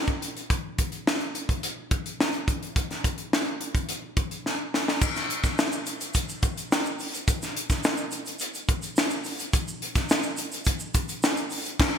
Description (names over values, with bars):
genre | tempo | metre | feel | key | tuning
pop | 106 BPM | 4/4 | straight | none | none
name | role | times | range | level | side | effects
crisp fusion drum kit | drums | 0.1-12.0 s | crash cymbal, hi-hat, kick drum, snare drum | -25 LUFS | equal | gated reverb
tube shaker | percussion | 5.0-11.8 s | none | -38 LUFS | right 3 dB | none
room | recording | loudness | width
moderate plate reverb, RT60 2.2 s | bright 1980s-style digital production | -25 LUFS | side -8 dB against mid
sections
0.0-5.0 A section; 5.0-12.0 B section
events
drum fill 4.5-5.0; band accent 11.8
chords
none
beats
| 0.50 1.06 1.63 2.19 | 2.76 3.32 3.89 4.45 | 5.02 5.58 6.15 6.71 | 7.28 7.84 8.41 8.97 | 9.54 10.10 10.67 11.23 | 11.80